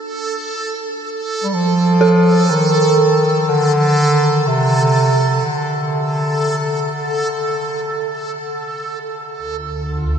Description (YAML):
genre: dark ambient drone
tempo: free time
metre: none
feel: none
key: D phrygian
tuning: A4 = 442 Hz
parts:
  - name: dark detuned synth bell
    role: arpeggios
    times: 0.0-9.4 s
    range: D4 to A4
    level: -22 LUFS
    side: right 1 dB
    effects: chorus, phaser, shimmer reverb, ping-pong delay
  - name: backwards swelling texture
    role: texture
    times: 0.0-10.2 s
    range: F4 to A4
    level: -21 LUFS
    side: right 2 dB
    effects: built-in reverb, shimmer reverb
  - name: warm bass clarinet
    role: melody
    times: 1.4-7.4 s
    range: C3 to G3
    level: -16 LUFS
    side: equal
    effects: shimmer reverb, ping-pong delay
  - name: swarming drone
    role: drone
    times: 9.5-10.2 s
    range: D2 to D3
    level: -21 LUFS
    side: right 1 dB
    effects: built-in reverb, wide subtle chorus
room: wet cathedral reverb, RT60 6.8 s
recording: in a vast, echoing space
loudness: -14 LUFS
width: side -7 dB against mid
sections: 0.0-9.4 A section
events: none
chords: 0.0 D5; 9.4 Dm